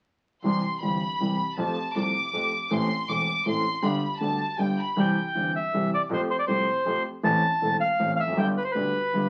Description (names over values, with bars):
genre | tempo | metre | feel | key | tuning
tango | 159 BPM | 3/4 | rubato | C major | A4 = 439 Hz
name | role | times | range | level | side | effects
warm studio violin section | second line | 0.4-5.0 s | G5 to D6 | -30 LUFS | equal | none
warm grand piano | accompaniment | 0.4-9.3 s | E1 to A4 | -29 LUFS | equal | none
clear double bass | bass | 0.4-9.3 s | E1 to F2 | -40 LUFS | equal | none
bandoneon | melody | 5.0-9.3 s | B4 to A5 | -27 LUFS | equal | none
room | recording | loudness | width
wet studio reverb, RT60 0.5 s | very old 78 rpm record, vinyl crackle | -26 LUFS | mono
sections
0.4-5.0 A section; 5.0-9.3 B section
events
none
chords
0.4 C; 1.6 Fadd9; 2.7 Am; 3.8 G; 5.0 C; 6.1 Fadd9; 7.2 Am; 8.4 G